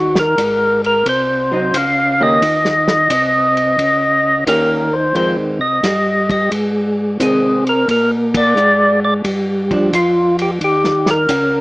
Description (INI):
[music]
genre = soul jazz organ trio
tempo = 88 BPM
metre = 4/4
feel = swing 68% on 8ths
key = Eb mixolydian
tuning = A4 = 440 Hz
[part]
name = percussive tonewheel organ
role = melody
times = 0.0-11.6 s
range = F4 to F5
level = -14 LUFS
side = equal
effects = slow rotary speaker, overdrive
[part]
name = tonewheel organ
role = bass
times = 0.0-11.6 s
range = Ab1 to C3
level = -18 LUFS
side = equal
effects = chorus vibrato, slow rotary speaker
[part]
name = warm soul drum kit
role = drums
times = 0.2-11.5 s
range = hi-hat, kick drum, ride cymbal, snare drum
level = -23 LUFS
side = equal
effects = none
[part]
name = hollow-body jazz guitar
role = accompaniment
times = 1.5-9.9 s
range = Eb3 to G4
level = -18 LUFS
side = right 1 dB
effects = none
[sound]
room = studio reverb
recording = rough home demo mix, small speaker sound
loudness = -12 LUFS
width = side -20 dB against mid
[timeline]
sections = 0.0-11.6 A section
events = band accent 8.2-8.6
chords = 0.0 Ab; 2.4 Eb7; 5.2 Fm7; 7.9 Bb7; 10.6 Eb7